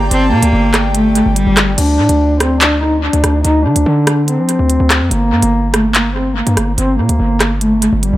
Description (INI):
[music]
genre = hip hop, drill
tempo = 144 BPM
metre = 4/4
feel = half-time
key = unclear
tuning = A4 = 440 Hz
[part]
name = dark cello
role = melody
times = 0.0-8.2 s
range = G3 to Eb4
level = -14 LUFS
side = equal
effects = low-pass filter, dub echo
[part]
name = breathy mellow jazz flute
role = second line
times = 0.0-1.7 s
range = G5 to Bb5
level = -25 LUFS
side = left 1 dB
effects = dub echo
[part]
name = airy breathy pad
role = sustained chords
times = 0.0-1.7 s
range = G4 to G5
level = -25 LUFS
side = right 1 dB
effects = chorus
[part]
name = hard-hitting 808-style bass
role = bass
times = 0.0-8.2 s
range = G1 to F3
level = -15 LUFS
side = equal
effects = none
[part]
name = drill drum kit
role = drums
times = 0.1-8.1 s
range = crash cymbal, handclaps, hi-hat, rim click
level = -17 LUFS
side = equal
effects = dub echo
[sound]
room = little or no reverb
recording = echo-heavy mix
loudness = -10 LUFS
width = side -15 dB against mid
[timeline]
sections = 0.0-1.8 A section; 1.8-8.2 B section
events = none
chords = 0.0 Gm; 1.8 N.C.; 5.1 Gm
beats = | 0.11 0.53 0.95 1.36 | 1.78 2.20 2.61 3.03 | 3.45 3.86 4.28 4.70 | 5.11 5.53 5.95 6.36 | 6.78 7.20 7.61 8.03